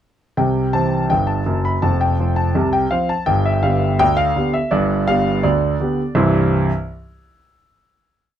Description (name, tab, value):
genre	ragtime piano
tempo	83 BPM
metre	2/4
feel	straight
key	C major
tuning	A4 = 440 Hz
part	clear concert grand piano	solo	0.4-6.7 s	F1 to B5	-15 LUFS	equal	none
room	little or no reverb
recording	close, detailed microphones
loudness	-15 LUFS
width	side -10 dB against mid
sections	0.4-6.2 A section; 6.2-7.6 final chord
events	none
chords	0.4 C; 1.8 F5; 3.3 G; 6.2 C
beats	| 0.38 1.10 | 1.82 2.54 | 3.26 3.98 | 4.71 5.43 | 6.16